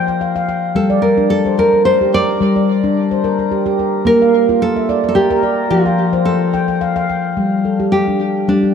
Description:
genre	world meditative, meditative tuned percussion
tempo	109 BPM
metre	3/4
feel	straight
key	G dorian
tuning	A4 = 440 Hz
part	nylon-string guitar	melody	0.0-8.7 s	D4 to D5	-16 LUFS	right 2 dB	shimmer reverb, tape echo
part	handpan	arpeggios	0.0-8.7 s	F3 to G5	-14 LUFS	left 2 dB	shimmer reverb
room	wet echo chamber reverb, RT60 1.6 s, studio ambience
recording	dark, warm production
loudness	-12 LUFS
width	side -7 dB against mid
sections	0.0-7.4 A section; 7.4-8.7 B section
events	none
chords	0.0 F5; 0.8 Gm; 4.1 Bb; 5.7 F; 7.4 G5

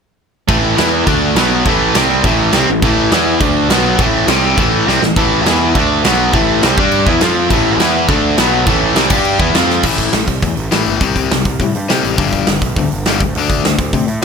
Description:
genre	punk rock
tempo	205 BPM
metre	4/4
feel	straight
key	A minor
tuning	A4 = 440 Hz
part	crunchy overdriven guitar	riff	0.5-14.2 s	G2 to G4	-15 LUFS	left 10 dB	none
part	distorted electric guitar	riff	0.5-9.8 s	A2 to G4	-16 LUFS	right 17 dB	overdrive
part	fuzz picked electric bass	bass	0.5-14.2 s	G1 to C3	-19 LUFS	equal	overdrive
part	big rock drum kit	drums	0.5-14.2 s	crash cymbal, hi-hat, kick drum, snare drum	-16 LUFS	right 1 dB	none
room	little or no reverb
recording	none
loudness	-11 LUFS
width	side -6 dB against mid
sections	0.5-9.8 A section; 9.8-14.2 B section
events	drum fill 4.9, 9.7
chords	0.5 A5; 0.8 E5; 1.1 D5; 1.4 B5; 1.7 A5; 2.0 C5; 2.2 Am; 3.1 E5; 3.4 D5; 3.7 B5; 4.0 A5; 4.3 C5; 4.6 Am; 5.5 E5; 5.8 D5; 6.0 B5; 6.3 Am; 6.8 G5; 7.1 E5; 7.2 F5; 7.5 A5; 7.8 E5; 8.1 D5; 8.4 B5; 8.7 Am; 9.1 G5; 9.4 E5; 9.5 F5; 9.8 A5; 11.0 C5; 12.2 G5; 13.2 D5

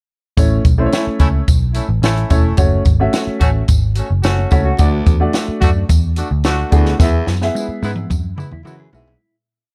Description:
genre	uptempo 1960s-style soul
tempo	109 BPM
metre	4/4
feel	straight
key	A major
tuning	A4 = 440 Hz
part	clear upright piano	accompaniment	0.4-9.1 s	A3 to E5	-22 LUFS	equal	none
part	vintage muted picked electric bass	bass	0.4-9.1 s	E1 to E3	-19 LUFS	equal	none
part	compact cocktail drum kit	drums	0.4-9.2 s	hi-hat, kick drum, snare drum, toms	-18 LUFS	equal	none
part	tambourine	percussion	0.4-9.1 s	none	-36 LUFS	equal	none
part	warm horn section	second line	0.9-9.2 s	G#3 to F#4	-25 LUFS	equal	none
part	mellow electric guitar	riff	4.4-4.9, 8.5-9.3 s	C#4 to G#4	-29 LUFS	equal	lush chorus
part	bright baritone saxophone	riff	4.8-9.2 s	D2 to G#2	-27 LUFS	equal	none
room	little or no reverb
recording	dark, warm production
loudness	-15 LUFS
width	mono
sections	0.4-9.2 verse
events	fade-out 7.0-9.2; drum fill 7.0-9.2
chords	0.4 A; 2.6 F#m; 4.8 D; 7.0 E

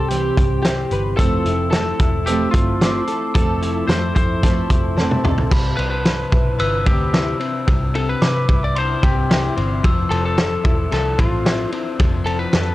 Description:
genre	jangly indie pop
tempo	111 BPM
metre	4/4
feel	straight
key	C major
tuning	A4 = 440 Hz
part	lightly driven lead guitar	melody	0.0-12.7 s	F4 to D5	-25 LUFS	left 1 dB	tape echo
part	glockenspiel with rubber mallets	second line	0.0-12.7 s	A5 to E6	-28 LUFS	left 1 dB	none
part	fingerpicked twelve-string acoustic guitar	accompaniment	0.0-5.5 s	C3 to A4	-24 LUFS	right 5 dB	lush chorus
part	direct-recorded clean electric guitar	arpeggios	0.0-12.7 s	C3 to B4	-25 LUFS	left 5 dB	analog chorus, tape echo
part	vintage muted picked electric bass	bass	0.0-12.7 s	E1 to C3	-23 LUFS	equal	none
part	loose indie drum kit	drums	0.1-12.7 s	crash cymbal, hi-hat, kick drum, ride cymbal, snare drum, toms	-18 LUFS	equal	none
room	light reverb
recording	dry, gritty hardware recording, cassette tape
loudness	-16 LUFS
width	side -16 dB against mid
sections	0.0-5.5 A section; 5.5-12.7 B section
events	drum fill 5.0-5.5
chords	0.0 Cmaj7; 1.2 Fmaj7; 5.5 Cmaj7; 9.8 Fmaj7

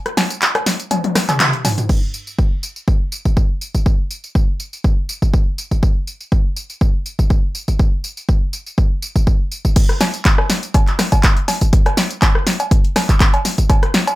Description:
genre	house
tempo	122 BPM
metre	4/4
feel	swing 54% on 16ths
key	none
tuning	none
part	punchy analog drum machine	drums	0.1-14.2 s	cowbell, crash cymbal, handclaps, hi-hat, rim click, snare drum, tambourine, toms	-18 LUFS	equal	none
part	electronic kick drum	drums	1.9-13.8 s	none	-14 LUFS	equal	none
room	little or no reverb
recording	none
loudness	-14 LUFS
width	side -18 dB against mid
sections	0.0-1.9 A section; 1.9-9.8 B section; 9.8-14.2 A section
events	break 0.0-1.9; drop 0.0-1.9, 9.8-14.2; drum fill 0.9-1.9; band accent 1.4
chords	none

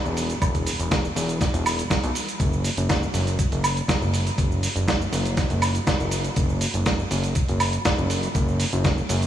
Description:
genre	nu-disco, nu disco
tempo	121 BPM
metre	4/4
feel	straight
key	unclear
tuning	A4 = 440 Hz
part	fat analog bass	bass	0.1-9.3 s	E1 to B1	-24 LUFS	equal	sidechain pumping
part	dusty soul sampler-style drum kit	drums	0.1-9.3 s	hi-hat, shaker, snare drum, woodblock	-25 LUFS	right 1 dB	none
part	electronic kick drum	drums	0.4-8.9 s	none	-24 LUFS	equal	none
room	moderate huge ambient reverb, RT60 4.7 s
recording	dreamy mix soaked in reverb, studio ambience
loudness	-21 LUFS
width	side -11 dB against mid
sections	0.0-9.3 A section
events	none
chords	none

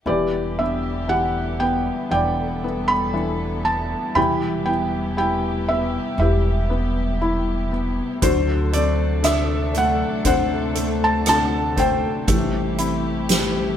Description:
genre	acoustic folk-pop ballad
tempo	59 BPM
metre	4/4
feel	straight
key	unclear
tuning	A4 = 440 Hz
part	felt-muted upright piano	melody	0.1-13.8 s	D3 to B5	-21 LUFS	left 1 dB	none
part	dark chamber string section	sustained chords	0.1-13.8 s	C3 to A4	-29 LUFS	left 1 dB	none
part	felt-muted upright piano	arpeggios	0.1-13.8 s	E3 to G4	-28 LUFS	equal	none
part	upright bass	bass	0.1-13.8 s	E1 to D2	-25 LUFS	right 1 dB	none
part	soft-mallet drum kit	drums	8.2-13.5 s	hi-hat, kick drum, rim click, snare drum	-24 LUFS	right 1 dB	none
room	moderate stone room reverb, RT60 1.5 s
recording	band playing live in one room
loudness	-18 LUFS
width	side -9 dB against mid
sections	0.1-13.8 A section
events	none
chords	0.1 Em7; 4.2 Cmaj7/E; 8.2 D7; 12.3 Am7

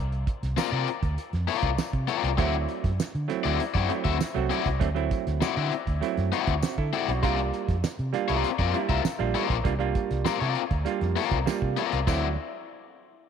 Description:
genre	funk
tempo	99 BPM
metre	4/4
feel	straight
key	D mixolydian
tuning	A4 = 441 Hz
part	vintage muted fingered electric bass	bass	0.0-12.4 s	Bb1 to D3	-28 LUFS	right 1 dB	none
part	damped 70s drum kit	drums	0.1-12.2 s	crash cymbal, hi-hat, kick drum, snare drum	-30 LUFS	right 3 dB	none
part	crunchy overdriven guitar	accompaniment	0.6-12.3 s	C4 to E5	-29 LUFS	left 12 dB	spring reverb
part	tambourine	percussion	0.6-12.4 s	none	-43 LUFS	left 13 dB	none
part	mellow clav	stabs	2.4-12.4 s	F#3 to A4	-30 LUFS	right 11 dB	none
room	light reverb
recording	1960s-style stereo with parts hard left and right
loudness	-24 LUFS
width	side -7 dB against mid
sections	0.0-12.1 A section; 12.1-13.3 B section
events	none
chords	0.0 C9sus4; 2.4 D9; 7.2 C9sus4; 12.1 D9

